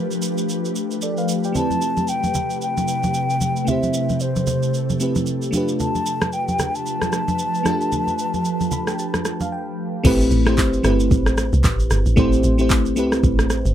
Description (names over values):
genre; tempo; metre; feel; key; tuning
amapiano; 113 BPM; 4/4; swing 58% on 16ths; A minor; A4 = 440 Hz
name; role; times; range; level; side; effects
bell-like FM electric piano; accompaniment; 0.0-13.7 s; A3 to B5; -23 LUFS; equal; chorus
ethereal airy pad; sustained chords; 0.0-10.0 s; C3 to B4; -25 LUFS; equal; ensemble chorus, built-in reverb, sidechain pumping
deep house drum kit; drums; 0.1-13.7 s; crash cymbal, handclaps, kick drum, rim click, shaker; -23 LUFS; equal; none
mellow hollow concert flute; melody; 1.6-9.5 s; C5 to A5; -24 LUFS; left 2 dB; ping-pong delay
congas; percussion; 1.6-9.5 s; none; -27 LUFS; right 1 dB; none
deep log drum bass; bass; 10.0-13.7 s; G1 to C2; -19 LUFS; equal; none
room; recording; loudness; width
light reverb; none; -18 LUFS; side -11 dB against mid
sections
0.0-10.0 A section; 10.0-13.7 B section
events
FM electric piano fill 8.5-10.0; break 9.5-10.0; drop 10.0-13.7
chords
0.0 G9; 1.6 Am9; 5.5 G9; 10.0 Am9